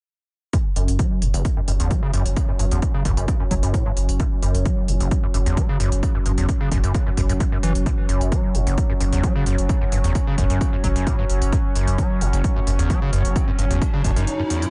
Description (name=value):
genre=driving peak-time techno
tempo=131 BPM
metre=4/4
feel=straight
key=unclear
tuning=A4 = 440 Hz
part: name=overdriven acid bass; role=riff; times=0.5-14.7 s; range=F#1 to F#3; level=-27 LUFS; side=equal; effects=subtle chorus, sidechain pumping, analog delay
part: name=analog drone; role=drone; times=1.3-14.7 s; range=F#3 to C#4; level=-32 LUFS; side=equal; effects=chorus, sidechain pumping
part: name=electronic hi-hat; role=drums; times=0.5-14.7 s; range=none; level=-35 LUFS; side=equal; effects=sidechain pumping on hats
part: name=electronic kick drum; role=drums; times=0.5-14.1 s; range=none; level=-24 LUFS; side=equal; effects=none
part: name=saturated sub bass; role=bass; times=0.8-14.3 s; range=F#1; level=-24 LUFS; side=equal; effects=tube saturation, sidechain pumping, low-pass filter
part: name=riser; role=sound effects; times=12.6-14.7 s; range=none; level=-33 LUFS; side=equal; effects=none
room=little or no reverb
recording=echo-heavy mix, nothing above 10.5 kHz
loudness=-21 LUFS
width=mono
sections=0.5-14.7 A section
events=filter sweep on acid bass 0.5-14.7; riser 12.6-14.7; break 14.3-14.7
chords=0.5 F#5